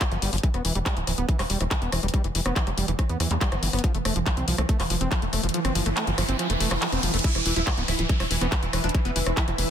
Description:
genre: psychedelic trance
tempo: 141 BPM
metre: 4/4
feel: straight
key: E phrygian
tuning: A4 = 440 Hz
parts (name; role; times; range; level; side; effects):
- overdriven acid bass; riff; 0.0-9.6 s; E3 to F4; -31 LUFS; moving between left 6 dB and right 5 dB; auto-pan, sidechain pumping, digital delay
- drum and bass drum kit; drums; 0.0-9.7 s; crash cymbal, handclaps, hi-hat, rim click; -28 LUFS; left 1 dB; soft clipping on snare
- electronic kick drum; drums; 0.0-9.5 s; none; -24 LUFS; equal; none
- formant-sweep wobble bass; second line; 0.1-0.3, 3.5-3.9, 6.9-7.1 s; B3; -41 LUFS; right 2 dB; none
- tight sequencer bass; bass; 0.1-9.7 s; D1 to E2; -27 LUFS; equal; tube saturation
- pulsing gated texture; sustained chords; 0.8-9.7 s; E3; -33 LUFS; right 3 dB; chorus, built-in reverb, sidechain pumping
- riser and downlifter; sound effects; 5.0-9.7 s; none; -33 LUFS; right 1 dB; none
- supersaw stab; melody; 7.2-9.6 s; E3 to E4; -32 LUFS; right 1 dB; phaser, sidechain pumping, digital delay
- granular cloud pad; texture; 8.3-9.7 s; B4 to B5; -35 LUFS; left 1 dB; built-in reverb, sidechain pumping
room: light reverb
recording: dense, heavily limited modern master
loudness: -22 LUFS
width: side -9 dB against mid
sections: 0.0-7.2 A section; 7.2-9.7 B section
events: riser 5.0-7.2; kick drops out 5.5-7.2; drop 7.2-9.7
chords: 0.4 E5; 3.8 F5; 7.2 E5

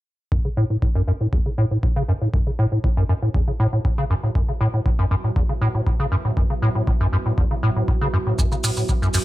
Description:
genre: acid house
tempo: 119 BPM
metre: 4/4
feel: straight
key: F# minor pentatonic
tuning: A4 = 442 Hz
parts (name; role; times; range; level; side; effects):
- acid bass, square; riff; 0.3-9.2 s; E2 to C#3; -20 LUFS; equal; wide subtle chorus, sidechain pumping, digital delay
- electronic kick drum; drums; 0.3-9.0 s; none; -22 LUFS; equal; none
- deep dark ambient pad; texture; 2.7-9.2 s; F#4 to A5; -33 LUFS; right 3 dB; chorus, built-in reverb, sidechain pumping
- maracas; percussion; 8.4-9.2 s; none; -28 LUFS; right 3 dB; none
- electronic hi-hat; drums; 8.6-9.2 s; none; -28 LUFS; equal; none
room: light reverb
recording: none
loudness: -18 LUFS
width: side -16 dB against mid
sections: 0.3-9.2 A section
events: fade-in on ambient pad 0.3-9.2; filter sweep on acid bass 0.3-9.2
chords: 0.3 F#m

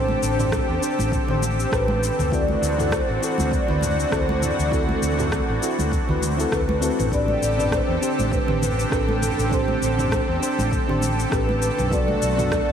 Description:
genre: sunset chillout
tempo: 100 BPM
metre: 4/4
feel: swing 56% on 16ths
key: A dorian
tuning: A4 = 440 Hz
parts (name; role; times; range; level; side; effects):
- vibraphone with soft mallets; melody; 0.0-12.7 s; A4 to D5; -27 LUFS; equal; analog delay
- mellow FM electric piano; accompaniment; 0.0-12.7 s; B3 to C5; -27 LUFS; moving between left 4 dB and right 6 dB; chorus, auto-pan, vintage 12-bit sampler grit, analog delay
- lush unison pad; sustained chords; 0.0-12.7 s; D3 to A4; -27 LUFS; equal; chorus
- fretless electric bass; bass; 0.0-12.7 s; F#1 to E2; -25 LUFS; equal; analog chorus
- congas; percussion; 0.1-12.7 s; none; -32 LUFS; right 2 dB; none
- deep house drum kit; drums; 0.2-12.7 s; cabasa, rim click, toms; -30 LUFS; left 1 dB; overdrive
- electronic kick drum; drums; 0.5-12.7 s; none; -27 LUFS; equal; overdrive
room: moderate lush hall reverb, RT60 3.0 s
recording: dreamy mix soaked in reverb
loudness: -19 LUFS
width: side -8 dB against mid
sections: 0.0-12.7 A section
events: none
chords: 0.0 Am11; 2.3 D9; 7.1 Am11; 11.9 Bm7

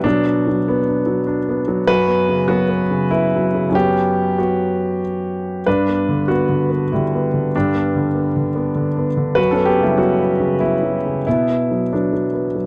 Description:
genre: neoclassical minimalist piano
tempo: 96 BPM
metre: 3/4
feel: rubato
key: unclear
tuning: A4 = 440 Hz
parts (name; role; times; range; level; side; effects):
- warm concert grand piano; solo; 0.0-12.7 s; F#2 to B4; -18 LUFS; equal; none
room: studio reverb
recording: dry, close 1970s-style studio recording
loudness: -18 LUFS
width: mono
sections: 0.0-12.7 A section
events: none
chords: 0.0 Bm; 1.9 F#sus4; 5.7 G; 9.4 F#sus4; 11.3 Bm

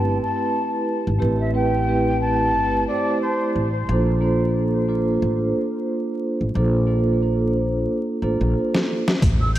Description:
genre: hip hop, boom-bap hip-hop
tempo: 90 BPM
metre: 4/4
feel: swing 56% on 16ths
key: unclear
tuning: A4 = 436 Hz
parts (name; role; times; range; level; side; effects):
- breathy silver concert flute; melody; 0.0-3.5, 9.4-9.6 s; C5 to G6; -25 LUFS; left 1 dB; high-pass filter, low-pass filter, ping-pong delay
- vibraphone with soft mallets; accompaniment; 0.0-9.0 s; A3 to C5; -22 LUFS; right 1 dB; cassette tape, high-pass filter, low-pass filter
- upright bass; bass; 0.0-9.6 s; G1 to Bb1; -22 LUFS; equal; none
- trip hop sampler-style drum kit; drums; 8.7-9.6 s; hi-hat, kick drum, shaker, snare drum; -20 LUFS; equal; overdrive
room: moderate lush hall reverb, RT60 2.7 s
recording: dreamy mix soaked in reverb, vinyl crackle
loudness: -19 LUFS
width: side -13 dB against mid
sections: 0.0-9.2 A section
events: drum fill 7.9-9.2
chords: 0.0 Am9; 3.9 Bbmaj9

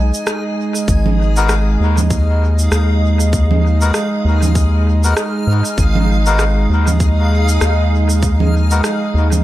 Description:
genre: ambient dub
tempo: 98 BPM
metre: 4/4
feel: swing 58% on 16ths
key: unclear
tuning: A4 = 440 Hz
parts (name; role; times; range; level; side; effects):
- warm analog pad; sustained chords; 0.0-9.4 s; G#3 to D#5; -20 LUFS; right 2 dB; chorus
- round analog bass; bass; 0.0-9.4 s; G#1 to G#2; -13 LUFS; equal; none
- backwards swelling texture; texture; 0.0-9.4 s; G#4 to G#5; -26 LUFS; equal; built-in reverb
- electronic cabasa, rim click and congas; drums; 0.1-9.4 s; none; -22 LUFS; right 3 dB; dub echo
- electronic kick drum; drums; 0.9-8.4 s; none; -16 LUFS; equal; none
- melodica; stabs; 1.4-8.8 s; B3 to A#4; -24 LUFS; left 4 dB; dub echo
room: light reverb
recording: none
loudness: -12 LUFS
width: side -15 dB against mid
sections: 0.0-9.4 A section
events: none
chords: 0.0 G#5

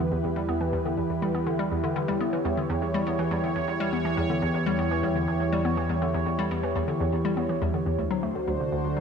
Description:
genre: ambient, sequencer-driven space music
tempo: 122 BPM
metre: 4/4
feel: straight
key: E dorian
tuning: A4 = 441 Hz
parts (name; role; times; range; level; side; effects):
- sweeping resonant pad; sustained chords; 0.0-9.0 s; D3 to C#5; -27 LUFS; right 1 dB; chorus
- hollow square pluck; riff; 0.0-9.0 s; D2 to B3; -28 LUFS; left 2 dB; chorus, tape echo
- analog drone; bass; 0.0-9.0 s; D2 to E2; -34 LUFS; equal; chorus, tube saturation
room: moderate plate reverb, RT60 2.7 s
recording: echo-heavy mix, faint mains hum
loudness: -24 LUFS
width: side -6 dB against mid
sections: 0.0-9.0 A section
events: none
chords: 0.0 Em; 8.0 D7

